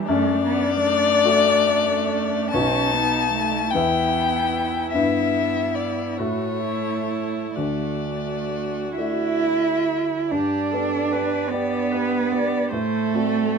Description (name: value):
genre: classical, slow romantic movement for piano quartet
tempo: 42-54 BPM (dotted quarters)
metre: 6/8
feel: rubato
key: D major, G major from 10.3 s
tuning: A4 = 440 Hz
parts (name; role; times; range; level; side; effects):
- warm cello; second line; 0.0-13.6 s; A3 to E4; -25 LUFS; right 6 dB; none
- rich viola; accompaniment; 0.0-13.6 s; D4 to D5; -29 LUFS; right 3 dB; none
- warm grand piano; accompaniment; 0.0-13.6 s; B1 to E5; -26 LUFS; left 3 dB; none
- warm violin; melody; 0.1-13.6 s; A4 to A5; -24 LUFS; left 8 dB; none
room: moderate studio reverb, RT60 0.6 s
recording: minimal, uncompressed stereo recording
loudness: -19 LUFS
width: side -6 dB against mid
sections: 0.0-10.3 A section; 10.3-13.6 B section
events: none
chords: 0.1 D/F#; 2.5 B7; 3.7 Em; 4.9 Em/G; 6.2 A; 7.6 D; 10.3 G; 12.7 D7/A